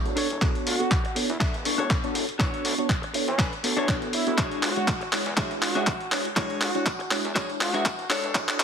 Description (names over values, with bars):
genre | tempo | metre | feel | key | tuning
filtered disco house | 121 BPM | 4/4 | swing 54% on 16ths | E mixolydian | A4 = 441 Hz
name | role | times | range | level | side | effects
bright reed electric piano | accompaniment | 0.0-8.6 s | G#3 to C#6 | -30 LUFS | right 1 dB | overdrive, phaser, sidechain pumping, low-pass filter
fat analog bass | bass | 0.0-8.6 s | E1 to A2 | -37 LUFS | equal | sidechain pumping, high-pass filter, low-pass filter
dusty soul sampler-style drum kit | drums | 0.1-8.6 s | handclaps, hi-hat | -27 LUFS | equal | sidechain pumping on perc, sidechain pumping on hats
direct-recorded clean electric guitar | riff | 0.2-8.6 s | D4 to E5 | -32 LUFS | left 3 dB | sidechain pumping, low-pass filter
electronic kick drum | drums | 0.4-8.5 s | none | -27 LUFS | equal | none
mellow horn section | melody | 0.7-8.6 s | C#4 to F#4 | -32 LUFS | right 1 dB | sidechain pumping, low-pass filter, ping-pong delay
room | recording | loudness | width
moderate plate reverb, RT60 1.4 s | dense, heavily limited modern master, high-pass filter | -23 LUFS | side -7 dB against mid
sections
0.0-8.6 A section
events
build-up 0.0-8.6; drum fill 0.0-8.6; filter sweep 0.0-8.6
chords
0.2 Bm9/E; 4.4 E13